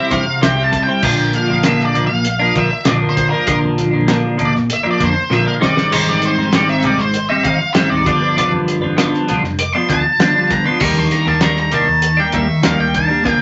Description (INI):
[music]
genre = psychedelic rock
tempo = 98 BPM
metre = 4/4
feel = straight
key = unclear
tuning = A4 = 444 Hz
[part]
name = octave-fuzz lead guitar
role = melody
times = 0.0-13.4 s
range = Bb4 to D6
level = -20 LUFS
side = equal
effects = distortion
[part]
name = twelve-string electric guitar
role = riff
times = 0.0-13.4 s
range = G2 to E4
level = -18 LUFS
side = equal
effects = phaser
[part]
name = vintage muted fingered electric bass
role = bass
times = 0.1-13.4 s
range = F1 to G2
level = -27 LUFS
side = equal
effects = none
[part]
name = cloth-damped thuddy drum kit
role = drums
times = 0.1-13.4 s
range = crash cymbal, hi-hat, kick drum, snare drum, splash cymbal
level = -22 LUFS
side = equal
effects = none
[part]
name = congas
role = percussion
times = 0.1-13.4 s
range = none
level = -31 LUFS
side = equal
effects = none
[sound]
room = wet club reverb, RT60 0.5 s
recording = vinyl crackle, nothing above 7.7 kHz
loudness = -15 LUFS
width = mono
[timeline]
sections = 0.0-13.4 A section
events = lead electric guitar solo 0.0-13.4; drum fill 5.3-5.9, 13.3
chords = 0.0 C; 1.0 Bb; 5.6 Abmaj7; 8.1 G7; 10.8 Ebmaj7